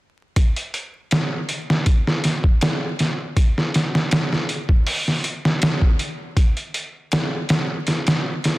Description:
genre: trip hop.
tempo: 80 BPM.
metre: 4/4.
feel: swing 53% on 16ths.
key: none.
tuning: none.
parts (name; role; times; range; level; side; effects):
trip hop sampler-style drum kit; drums; 0.4-8.6 s; hi-hat, kick drum, snare drum; -18 LUFS; equal; studio reverb.
room: light reverb.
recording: dense, heavily limited modern master, vinyl crackle.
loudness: -18 LUFS.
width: side -19 dB against mid.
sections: 0.4-8.6 A section.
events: none.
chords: none.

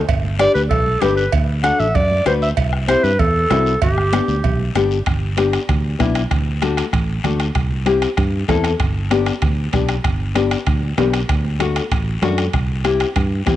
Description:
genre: latin, cumbia.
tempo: 193 BPM.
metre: 4/4.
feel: straight.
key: G major.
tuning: A4 = 439 Hz.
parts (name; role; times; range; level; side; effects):
fingered electric bass; bass; 0.0-13.6 s; G1 to G2; -20 LUFS; equal; none.
bombo; percussion; 0.1-13.6 s; none; -22 LUFS; right 1 dB; none.
congas; percussion; 0.1-13.6 s; none; -31 LUFS; right 7 dB; none.
cowbell and timbales; percussion; 0.1-13.6 s; none; -28 LUFS; right 10 dB; none.
guiro; percussion; 0.1-13.6 s; none; -34 LUFS; left 7 dB; none.
clear clarinet; melody; 0.4-4.7 s; G4 to F#5; -18 LUFS; right 1 dB; none.
nylon-string guitar; accompaniment; 0.4-13.6 s; A3 to B4; -21 LUFS; left 6 dB; cassette tape.
room: light reverb, small room reverb.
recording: home recording on cassette, nothing above 10.3 kHz.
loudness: -15 LUFS.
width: side -13 dB against mid.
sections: 0.0-5.1 A section; 5.1-13.6 B section.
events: none.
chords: 0.1 G; 1.3 D; 2.6 C; 3.8 G; 6.3 D; 7.6 C; 8.8 G; 11.3 D; 12.5 C.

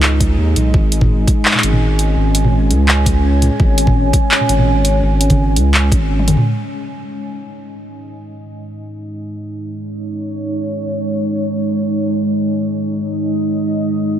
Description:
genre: half-time drum and bass.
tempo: 168 BPM.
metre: 4/4.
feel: swing 53% on 16ths, half-time.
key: unclear.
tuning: A4 = 442 Hz.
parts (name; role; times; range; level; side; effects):
deep dark ambient pad; sustained chords; 0.0-14.2 s; G#3 to G#5; -19 LUFS; right 1 dB; chorus, built-in reverb, sidechain pumping.
saturated sub bass; bass; 0.0-6.4 s; G#1 to D#2; -14 LUFS; equal; none.
drum and bass drum kit; drums; 0.0-6.4 s; handclaps, hi-hat, toms; -17 LUFS; equal; overdrive.
electronic kick drum; drums; 0.2-6.0 s; none; -15 LUFS; equal; overdrive.
room: light reverb, digital ambience.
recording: none.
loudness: -13 LUFS.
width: side -11 dB against mid.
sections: 0.0-6.5 A section; 6.5-14.2 B section.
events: drum fill 6.2; filter sweep on ambient pad 6.5-14.2.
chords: 0.0 G#5.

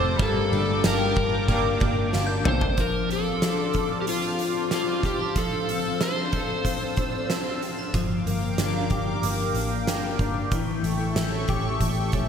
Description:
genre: dream pop.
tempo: 93 BPM.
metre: 4/4.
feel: straight.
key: unclear.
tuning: A4 = 440 Hz.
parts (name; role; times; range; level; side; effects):
overdriven slide guitar; melody; 0.0-7.6 s; F4 to C5; -28 LUFS; left 2 dB; wide subtle chorus, ping-pong delay.
clean electric guitar; accompaniment; 0.0-2.8 s; G3 to D5; -32 LUFS; right 4 dB; harmonic tremolo, lush chorus.
phased analog pad; sustained chords; 0.0-12.3 s; Bb3 to E6; -32 LUFS; right 1 dB; phaser, chorus.
clean electric guitar; arpeggios; 0.0-12.3 s; E3 to A4; -29 LUFS; left 4 dB; ensemble chorus, ping-pong delay.
vintage muted picked electric bass; bass; 0.0-2.7, 7.9-12.3 s; F1 to C2; -28 LUFS; right 1 dB; none.
oversized low-tuned drum kit; drums; 0.2-12.3 s; hi-hat, kick drum, ride cymbal, snare drum, tambourine, toms; -27 LUFS; right 1 dB; gated reverb.
soft synth bell; texture; 2.3-2.9 s; G6; -37 LUFS; left 2 dB; chorus, phaser, ping-pong delay.
room: moderate lush hall reverb, RT60 1.8 s, studio reverb.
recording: bright 1980s-style digital production.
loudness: -22 LUFS.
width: side -7 dB against mid.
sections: 0.0-2.8 A section; 2.8-12.3 B section.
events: drum fill 2.1-2.8.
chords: 0.2 Gmadd9; 2.8 Dm7; 7.9 Gm7; 10.5 A7.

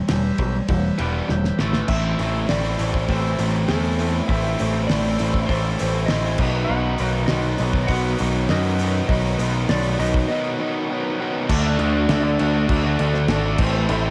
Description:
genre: garage rock duo or trio.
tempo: 100 BPM.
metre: 4/4.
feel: straight.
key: unclear.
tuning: A4 = 440 Hz.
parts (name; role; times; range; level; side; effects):
raw garage guitar; riff; 0.0-14.1 s; A2 to F#4; -26 LUFS; equal; overdrive.
overdriven combo organ; sustained chords; 0.1-14.1 s; D4 to A5; -36 LUFS; equal; none.
growling picked electric bass; bass; 0.1-14.1 s; E1 to F#2; -25 LUFS; equal; overdrive.
cloth-damped thuddy drum kit; drums; 0.1-14.0 s; crash cymbal, hi-hat, kick drum, ride cymbal, snare drum; -28 LUFS; equal; cassette tape.
clean lap steel guitar; melody; 1.9-10.9 s; A4 to F#5; -31 LUFS; equal; cassette tape.
room: light reverb, studio reverb.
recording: home recording on cassette.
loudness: -21 LUFS.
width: mono.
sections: 0.0-1.9 A section; 1.9-11.5 B section; 11.5-14.1 C section.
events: transistor combo organ fill 0.7-1.9; drum fill 1.3-1.9; break 10.3-11.5.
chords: 0.0 Em; 1.6 A5; 1.9 Am; 6.4 B; 11.5 D; 13.6 Am.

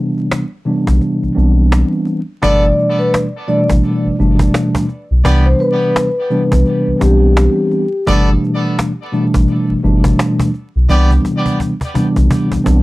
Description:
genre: hip hop, boom-bap hip-hop.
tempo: 85 BPM.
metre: 4/4.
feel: swing 59% on 16ths.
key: G major.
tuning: A4 = 440 Hz.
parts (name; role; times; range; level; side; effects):
mellow tine electric piano; accompaniment; 0.0-12.8 s; B2 to D4; -15 LUFS; equal; medium stereo tremolo, cassette tape, high-pass filter, low-pass filter.
cajon; drums; 0.2-12.8 s; none; -20 LUFS; equal; none.
sub bass with octave; bass; 0.9-12.8 s; G1 to C2; -12 LUFS; equal; tube saturation.
vibraphone with soft mallets; melody; 2.4-8.0 s; G4 to D5; -17 LUFS; left 1 dB; high-pass filter, low-pass filter, tape echo.
bright trumpet section; stabs; 2.4-11.1 s; B3 to D5; -23 LUFS; equal; high-pass filter, low-pass filter, tape echo.
room: light reverb.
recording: dry, gritty hardware recording, vinyl crackle.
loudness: -12 LUFS.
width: side -19 dB against mid.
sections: 0.0-2.4 A section; 2.4-12.8 B section.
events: kick muted 1.0-2.4; drum fill 10.9-12.8.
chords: 0.0 Cmaj9; 2.4 G69; 5.2 Cmaj9; 8.1 G69; 10.9 Cmaj9.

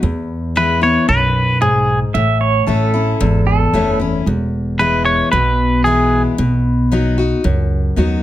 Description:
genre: honky-tonk and classic country.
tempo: 113 BPM.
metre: 4/4.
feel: straight.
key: E major.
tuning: A4 = 440 Hz.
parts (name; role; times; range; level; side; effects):
picked steel-string acoustic guitar; accompaniment; 0.0-8.2 s; E2 to F#4; -18 LUFS; left 4 dB; none.
upright bass; bass; 0.0-8.2 s; E1 to E2; -17 LUFS; right 1 dB; none.
twangy electric guitar; melody; 0.6-6.2 s; G#4 to C#5; -15 LUFS; equal; none.
pedal steel guitar; second line; 2.1-4.0 s; A4 to E5; -18 LUFS; right 4 dB; none.
room: light reverb.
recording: close, detailed microphones.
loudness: -13 LUFS.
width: side -13 dB against mid.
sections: 0.0-8.2 A section.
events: none.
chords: 0.0 E; 2.1 A; 4.3 E; 6.4 B.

